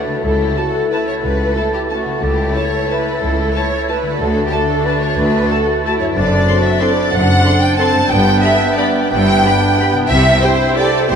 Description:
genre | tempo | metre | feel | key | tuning
classical, orchestral ballroom waltz | 182 BPM | 3/4 | uneven beats, rubato | D major, G major from 6.2 s | A4 = 439 Hz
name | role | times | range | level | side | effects
clear oboe | second line | 0.0-11.2 s | G5 to A5 | -24 LUFS | left 3 dB | none
mellow clarinet | second line | 0.0-11.2 s | D4 to F#4 | -25 LUFS | right 2 dB | none
small flute group | second line | 0.0-11.2 s | F#4 to A5 | -22 LUFS | right 3 dB | none
warm studio violin section | second line | 0.0-11.2 s | F#4 to A5 | -19 LUFS | equal | none
dark bassoon | accompaniment | 0.0-11.2 s | A3 to C4 | -23 LUFS | right 2 dB | none
rich studio viola section | accompaniment | 0.0-11.2 s | B3 to A4 | -24 LUFS | left 1 dB | none
dark French horn section | sustained chords | 0.0-10.9 s | A3 to A4 | -26 LUFS | left 1 dB | none
concert harp | arpeggios | 0.0-11.2 s | F#2 to A4 | -25 LUFS | left 4 dB | none
rich studio cello section | bass | 0.2-11.2 s | C#2 to C3 | -22 LUFS | equal | none
rich studio double bass section | bass | 0.2-11.2 s | F#1 to D2 | -20 LUFS | equal | none
rich studio violin section | melody | 0.6-10.9 s | G5 to C6 | -28 LUFS | equal | none
room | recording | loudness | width
wet cathedral reverb, RT60 6.6 s | in a vast, echoing space | -12 LUFS | side -7 dB against mid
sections
0.0-11.2 A section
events
none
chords
0.2 A/C#; 4.2 D; 6.2 D7/F#; 8.1 G; 10.1 C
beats
| 0.23 0.56 0.91 | 1.24 1.57 1.91 | 2.23 2.56 2.90 | 3.22 3.55 3.89 | 4.21 4.53 4.87 | 5.18 5.51 5.85 | 6.16 6.48 6.82 | 7.13 7.46 7.79 | 8.12 8.44 8.78 | 9.12 9.45 9.79 | 10.11 10.44 10.78 | 11.10

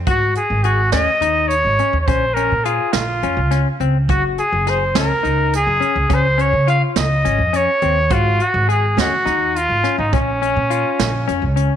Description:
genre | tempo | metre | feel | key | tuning
progressive instrumental, band music in an uneven meter | 209 BPM (eighths) | 7/8 | straight | unclear | A4 = 440 Hz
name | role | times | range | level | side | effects
upright bass | bass | 0.0-11.7 s | Gb1 to Db3 | -20 LUFS | equal | none
warm trumpet | melody | 0.1-11.8 s | Db4 to F5 | -18 LUFS | right 1 dB | slapback echo
semi-hollow electric guitar | arpeggios | 0.1-11.7 s | C4 to Ab4 | -23 LUFS | left 12 dB | none
jazz brush drum kit | drums | 0.1-11.7 s | hi-hat, kick drum, snare drum | -22 LUFS | right 4 dB | none
room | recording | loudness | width
light reverb | 1960s-style stereo | -14 LUFS | side -9 dB against mid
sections
0.0-11.8 A section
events
none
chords
0.1 Ab7sus4; 2.1 Bbm; 4.1 Gbadd9; 6.1 Db; 8.1 Ab7sus4; 10.1 Bbm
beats
| 0.08 0.37 0.65 0.94 1.23 1.51 1.80 | 2.09 2.38 2.66 2.95 3.24 3.52 3.81 | 4.10 4.38 4.67 4.96 5.25 5.53 5.82 | 6.11 6.39 6.68 6.97 7.25 7.54 7.83 | 8.12 8.40 8.69 8.98 9.27 9.55 9.84 | 10.13 10.42 10.70 10.99 11.28 11.56

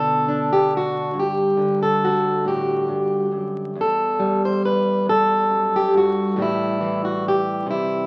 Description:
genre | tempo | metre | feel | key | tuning
folk, solo fingerstyle acoustic guitar | 46 BPM (dotted quarters) | 6/8 | straight | A dorian | A4 = 439 Hz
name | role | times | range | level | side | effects
fingerpicked plugged-in steel-string acoustic guitar | solo | 0.0-8.1 s | E2 to C5 | -21 LUFS | equal | none
room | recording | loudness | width
wet studio reverb, RT60 0.9 s | very old 78 rpm record, vinyl crackle | -21 LUFS | mono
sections
0.0-8.1 A section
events
none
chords
0.0 Bm7; 1.1 G5; 3.8 Emadd9; 6.4 Am7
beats
| 1.15 2.46 | 3.77 5.07 | 6.38 7.67

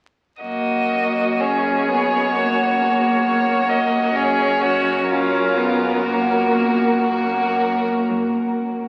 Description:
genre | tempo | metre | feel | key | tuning
classical, slow romantic movement for string quartet | 54-68 BPM | 4/4 | rubato | F# major | A4 = 443 Hz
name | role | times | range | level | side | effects
rich violin | melody | 0.4-7.9 s | A#4 to D#5 | -25 LUFS | equal | none
rich violin | second line | 0.4-7.9 s | E#4 to G#4 | -23 LUFS | equal | none
rich viola | accompaniment | 0.4-7.9 s | A#3 to C#4 | -23 LUFS | equal | none
rich cello | bass | 0.4-8.9 s | F#2 | -33 LUFS | equal | none
room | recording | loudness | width
wet cathedral reverb, RT60 5.7 s | very old 78 rpm record, vinyl crackle | -19 LUFS | mono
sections
0.4-8.1 A section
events
none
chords
0.4 F#; 8.1 N.C.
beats
| 0.42 1.40 2.34 3.23 | 4.14 5.09 6.04 7.03 | 8.09

